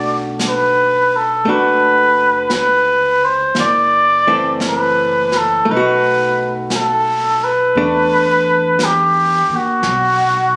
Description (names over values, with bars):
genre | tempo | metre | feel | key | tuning
jazz ballad | 57 BPM | 4/4 | swing 66% on 8ths | unclear | A4 = 444 Hz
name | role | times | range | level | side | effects
trumpet with cup mute | melody | 0.0-10.6 s | F#4 to D5 | -16 LUFS | equal | none
archtop guitar, miked and amplified | accompaniment | 0.0-10.6 s | E3 to F#4 | -23 LUFS | equal | none
upright bass | bass | 0.0-10.6 s | F#1 to E2 | -30 LUFS | equal | none
vintage brush drum kit | drums | 0.4-10.6 s | brushed snare drum, hi-hat, snare drum | -28 LUFS | equal | none
room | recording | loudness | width
light reverb | recorded on a phone in the room, studio ambience, compression | -15 LUFS | mono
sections
0.0-10.6 A section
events
none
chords
0.0 Bm7; 3.5 F#m7b5; 5.6 B7; 7.7 E9sus4